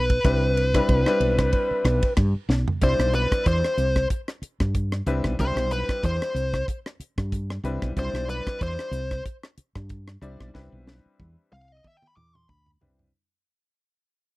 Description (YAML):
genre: electric jazz fusion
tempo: 93 BPM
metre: 4/4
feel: swing 55% on 16ths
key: C major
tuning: A4 = 440 Hz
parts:
  - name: smooth overdriven lead guitar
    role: melody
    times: 0.0-12.7 s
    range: B4 to D6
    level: -25 LUFS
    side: equal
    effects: slapback echo
  - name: woody fretless electric bass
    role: bass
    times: 0.0-13.1 s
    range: B1 to G2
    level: -25 LUFS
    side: equal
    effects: none
  - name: tight funk drum kit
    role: drums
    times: 0.1-13.1 s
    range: hi-hat, kick drum, ride cymbal, rim click, snare drum, toms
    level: -26 LUFS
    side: equal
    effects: none
  - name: bright concert grand piano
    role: accompaniment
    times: 0.2-13.1 s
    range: G3 to D5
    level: -30 LUFS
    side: left 2 dB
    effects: none
room: little or no reverb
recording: dry, close 1970s-style studio recording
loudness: -22 LUFS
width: side -20 dB against mid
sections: 0.0-2.8 A section; 2.8-13.1 B section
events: drum fill 2.5-2.8, 10.5-13.1; fade-out 2.8-13.1; lead electric guitar solo 2.8-13.1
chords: 0.0 Cmaj7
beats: | 0.24 0.89 1.53 2.17 | 2.81 3.46 4.10 4.74 | 5.39 6.03 6.67 7.32 | 7.96 8.61 9.25 9.90 | 10.54 11.19 11.84 12.48